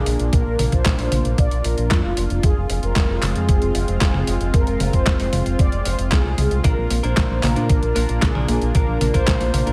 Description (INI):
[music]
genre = italo disco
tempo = 114 BPM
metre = 4/4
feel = straight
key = unclear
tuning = A4 = 439 Hz
[part]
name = mellow synth brass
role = melody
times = 0.0-9.7 s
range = F4 to D5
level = -29 LUFS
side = equal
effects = chorus, digital delay
[part]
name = lush unison pad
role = sustained chords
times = 0.0-9.7 s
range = Ab3 to F4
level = -29 LUFS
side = equal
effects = chorus
[part]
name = fingered electric bass with an envelope filter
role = bass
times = 0.0-9.7 s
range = F1 to Bb2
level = -24 LUFS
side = equal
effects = none
[part]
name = clean 12-bit digital drum machine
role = drums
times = 0.1-9.7 s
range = handclaps, hi-hat, snare drum, toms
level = -26 LUFS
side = equal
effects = overdrive, gated reverb
[part]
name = electronic kick drum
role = drums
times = 0.3-9.4 s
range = none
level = -20 LUFS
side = equal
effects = overdrive
[part]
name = warbly dusty pluck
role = arpeggios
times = 6.6-9.7 s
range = D3 to D4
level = -31 LUFS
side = equal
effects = chorus
[part]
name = direct-recorded clean electric guitar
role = stabs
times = 6.6-9.7 s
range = Bb3 to Bb4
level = -32 LUFS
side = equal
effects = none
[sound]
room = digital ambience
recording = none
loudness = -19 LUFS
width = mono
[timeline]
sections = 0.0-9.7 A section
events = none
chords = 0.0 Bb; 2.4 Fm; 6.6 Bb